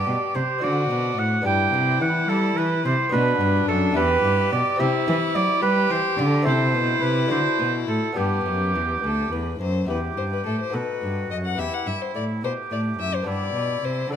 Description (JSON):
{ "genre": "classical, baroque-style sonata movement with continuo", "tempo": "72 BPM (dotted quarters)", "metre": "6/8", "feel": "straight", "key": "G major from 3.1 s, E minor from 9.9 s", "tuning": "A4 = 438 Hz", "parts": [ { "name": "warm violin", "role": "melody", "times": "0.0-14.2 s", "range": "B3 to F#5", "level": "-27 LUFS", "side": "left 8 dB", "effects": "none" }, { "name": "clear oboe", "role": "second line", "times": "0.0-14.2 s", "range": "D4 to G5", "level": "-24 LUFS", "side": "right 5 dB", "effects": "none" }, { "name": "lute", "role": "accompaniment", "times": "0.0-14.2 s", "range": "D2 to A4", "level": "-31 LUFS", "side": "left 3 dB", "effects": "none" }, { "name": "warm cello", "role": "bass", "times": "0.0-14.2 s", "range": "D2 to G3", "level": "-25 LUFS", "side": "equal", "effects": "none" } ], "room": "moderate recital hall reverb, RT60 1.7 s", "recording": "none", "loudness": "-20 LUFS", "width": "side -8 dB against mid", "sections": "0.0-9.9 A section; 9.9-14.2 A section", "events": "none", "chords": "0.0 G; 0.6 D7; 1.5 G; 3.1 Bm; 4.0 Em; 4.8 C; 6.5 Am; 7.3 D7; 8.2 G; 9.9 Em; 10.7 B7; 11.6 Em; 13.3 G", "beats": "0.63 | 1.46 2.29 | 3.13 3.97 | 4.80 5.63 | 6.46 7.31 | 8.18 9.04 | 9.90 10.75 | 11.59 12.44 | 13.28 14.11" }